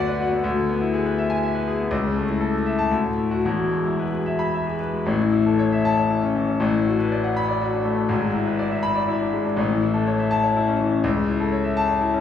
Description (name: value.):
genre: classical, virtuoso piano study.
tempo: 109-126 BPM.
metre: 3/4.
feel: rubato.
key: A major.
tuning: A4 = 437 Hz.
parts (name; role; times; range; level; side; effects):
clear concert grand piano; solo; 0.0-12.2 s; E1 to B5; -20 LUFS; left 3 dB; none.
room: wet recital hall reverb, RT60 1.6 s.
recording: heard from further back in the room, vinyl crackle, studio ambience.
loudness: -20 LUFS.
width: side -9 dB against mid.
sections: 0.0-5.1 A section; 5.1-12.2 B section.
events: none.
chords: 0.4 E7/D; 1.9 A/C#; 2.9 D; 3.5 E; 5.1 A; 6.6 Bm7/A; 8.1 E7/G#; 9.6 A; 11.0 A/C#.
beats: | 0.45 0.94 1.43 | 1.92 2.41 2.92 | 3.45 4.00 4.54 | 5.07 5.58 6.09 | 6.59 7.09 7.59 | 8.08 8.58 9.07 | 9.58 10.07 10.55 | 11.04 11.53 12.01.